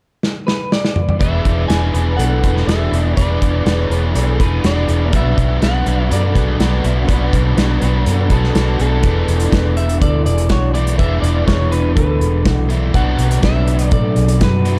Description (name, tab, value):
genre	rock, shoegaze and dream pop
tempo	123 BPM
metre	4/4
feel	straight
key	E mixolydian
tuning	A4 = 444 Hz
part	loose indie drum kit	drums	0.2-14.8 s	hi-hat, kick drum, snare drum, toms	-21 LUFS	equal	none
part	electric guitar at the edge of break-up	melody	0.5-14.8 s	A4 to G#5	-26 LUFS	equal	digital delay
part	fingerpicked twelve-string acoustic guitar	arpeggios	1.2-14.8 s	E4 to B4	-30 LUFS	equal	subtle chorus, digital delay
part	crunchy overdriven guitar	riff	1.2-14.8 s	B2 to G#4	-25 LUFS	equal	reverse reverb
part	overdriven semi-hollow guitar	riff	1.2-14.8 s	B2 to B4	-25 LUFS	equal	analog chorus
part	vintage muted fingered electric bass	bass	1.2-14.8 s	E1 to A2	-19 LUFS	equal	none
room	small room ambience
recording	dark, warm production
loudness	-15 LUFS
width	mono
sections	0.0-1.2 A section; 1.2-9.0 B section; 9.0-14.8 C section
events	drum fill 0.2-1.2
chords	0.0 N.C.; 1.2 E7sus4; 5.1 Bm7; 9.0 E7sus4; 12.9 Bm7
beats	0.22 0.71 | 1.21 1.70 2.19 2.68 | 3.17 3.66 4.15 4.64 | 5.13 5.62 6.11 6.60 | 7.09 7.57 8.06 8.55 | 9.04 9.53 10.01 10.50 | 10.99 11.48 11.96 12.45 | 12.94 13.43 13.92 14.41